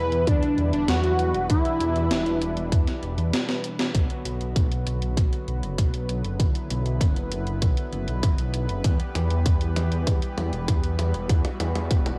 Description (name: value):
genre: synthwave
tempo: 98 BPM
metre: 4/4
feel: straight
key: B minor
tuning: A4 = 440 Hz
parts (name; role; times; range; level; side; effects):
- unison lead; melody; 0.0-3.3 s; D4 to B4; -27 LUFS; equal; analog chorus, cassette tape, analog delay, shimmer reverb
- brassy analog pad; sustained chords; 0.0-12.2 s; B2 to B4; -35 LUFS; equal; chorus, sidechain pumping, cassette tape, shimmer reverb
- dark detuned saw bass; bass; 0.0-12.2 s; E1 to E2; -29 LUFS; equal; sidechain pumping
- gated 80s digital drum machine; drums; 0.1-12.2 s; hi-hat, snare drum, toms; -33 LUFS; equal; gated reverb, gated reverb snare, high-pass filter on hats, small room ambience, high-pass filter on snare, high-pass filter on toms
- electronic kick drum; drums; 0.3-12.0 s; none; -25 LUFS; equal; small room ambience
room: light reverb, digital ambience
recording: home recording on cassette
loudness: -24 LUFS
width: mono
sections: 0.0-3.9 A section; 3.9-12.2 B section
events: drum fill 3.5-3.9, 3.9-12.2; band accent 3.8-4.1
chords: 0.0 Em; 3.9 Bm; 8.8 Em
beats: 0.27 0.89 | 1.50 2.11 2.72 3.33 | 3.95 4.56 5.17 5.78 | 6.39 7.01 7.62 8.23 | 8.84 9.46 10.07 10.68 | 11.29 11.90